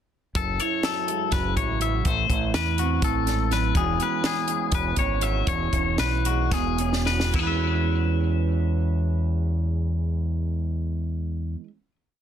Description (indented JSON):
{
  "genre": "math rock and midwest emo",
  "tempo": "212-247 BPM (eighths)",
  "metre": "7/8",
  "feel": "straight",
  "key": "E major",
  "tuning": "A4 = 437 Hz",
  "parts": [
    { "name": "electric guitar through a small old amp", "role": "accompaniment", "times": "0.4-11.8 s", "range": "E2 to F#4", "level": "-29 LUFS", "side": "right 11 dB", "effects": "phaser" },
    { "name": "twangy electric guitar", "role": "arpeggios", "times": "0.4-11.7 s", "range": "E4 to E5", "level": "-27 LUFS", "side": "left 11 dB", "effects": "warbly pitch drift, digital delay" },
    { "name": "growling fingered electric bass", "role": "bass", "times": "0.4-11.5 s", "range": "E1 to E2", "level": "-25 LUFS", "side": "equal", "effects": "overdrive" },
    { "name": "compact cocktail drum kit", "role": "drums", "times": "0.4-7.5 s", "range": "crash cymbal, hi-hat, kick drum, snare drum", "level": "-27 LUFS", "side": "equal", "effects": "none" }
  ],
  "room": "light reverb",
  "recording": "dense, heavily limited modern master",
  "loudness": "-22 LUFS",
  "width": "side -9 dB against mid",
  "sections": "0.4-7.4 A section; 7.4-11.3 final chord",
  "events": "slowing down 3.8-7.4; drum fill 6.9-7.4",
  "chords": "0.4 F#m9; 2.1 Amadd9; 3.8 E69"
}